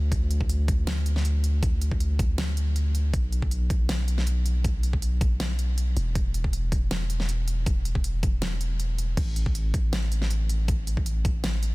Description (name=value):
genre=future bass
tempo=159 BPM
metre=4/4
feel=swing 53% on 16ths, half-time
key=unclear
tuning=A4 = 436 Hz
part: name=long sustained 808-style bass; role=bass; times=0.0-11.7 s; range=E1 to D2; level=-25 LUFS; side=equal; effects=tube saturation, sidechain pumping
part: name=electronic kick drum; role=drums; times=0.1-11.3 s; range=none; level=-26 LUFS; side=equal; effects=studio reverb
part: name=pop drum kit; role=drums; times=0.1-11.7 s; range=crash cymbal, hi-hat, snare drum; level=-34 LUFS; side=equal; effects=studio reverb
room=digital ambience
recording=dense, heavily limited modern master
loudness=-23 LUFS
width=side -22 dB against mid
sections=0.0-11.7 A section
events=kick drops out 8.8-9.2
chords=none